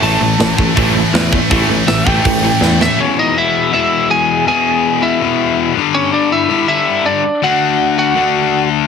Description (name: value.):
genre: punk rock.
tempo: 162 BPM.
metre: 4/4.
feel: straight.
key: unclear.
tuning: A4 = 442 Hz.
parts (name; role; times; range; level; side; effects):
lightly driven lead guitar; melody; 0.0-8.7 s; C#4 to A5; -15 LUFS; right 1 dB; none.
cranked stack guitar; riff; 0.0-3.0 s; A2 to A3; -18 LUFS; right 13 dB; overdrive.
distorted electric guitar; riff; 0.0-8.9 s; E2 to D4; -16 LUFS; left 13 dB; distortion.
scooped high-gain guitar; riff; 0.0-3.0 s; A2 to A3; -18 LUFS; equal; distortion.
picked electric bass; bass; 0.0-2.9 s; A1 to E2; -18 LUFS; right 1 dB; none.
tight metal drum kit; drums; 0.0-2.9 s; hi-hat, kick drum, snare drum; -18 LUFS; right 1 dB; none.
room: little or no reverb.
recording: heavily compressed radio sound.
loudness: -11 LUFS.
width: side -6 dB against mid.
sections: 0.0-3.0 A section; 3.0-8.9 B section.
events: lead electric guitar solo 0.0-3.0; drum fill 2.6-3.0.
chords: 0.0 A5; 3.0 E; 5.8 G5; 7.4 D.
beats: | 0.03 0.40 0.77 1.14 | 1.51 1.88 2.25 2.62 | 2.99 3.36 3.73 4.10 | 4.47 4.84 5.21 5.58 | 5.95 6.32 6.69 7.05 | 7.42 7.79 8.16 8.53.